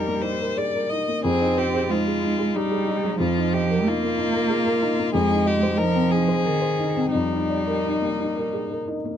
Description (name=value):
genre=neoclassical piano and strings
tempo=92 BPM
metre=3/4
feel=uneven beats, rubato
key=unclear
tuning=A4 = 437 Hz
part: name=clear violin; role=melody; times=0.0-8.8 s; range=Eb4 to Eb5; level=-26 LUFS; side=left 5 dB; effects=none
part: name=rich cello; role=second line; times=0.0-8.5 s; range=Eb3 to C4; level=-25 LUFS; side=right 4 dB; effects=none
part: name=felt-muted upright piano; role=accompaniment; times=0.0-9.2 s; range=F2 to Eb5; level=-24 LUFS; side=left 1 dB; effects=none
room=light reverb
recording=dark, warm production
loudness=-20 LUFS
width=side -9 dB against mid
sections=0.0-9.2 A section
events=none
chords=0.0 Ebmaj7/F; 1.2 Fm7; 3.2 Bbsus4/F; 5.1 Ab/F; 7.1 Ebmaj7/F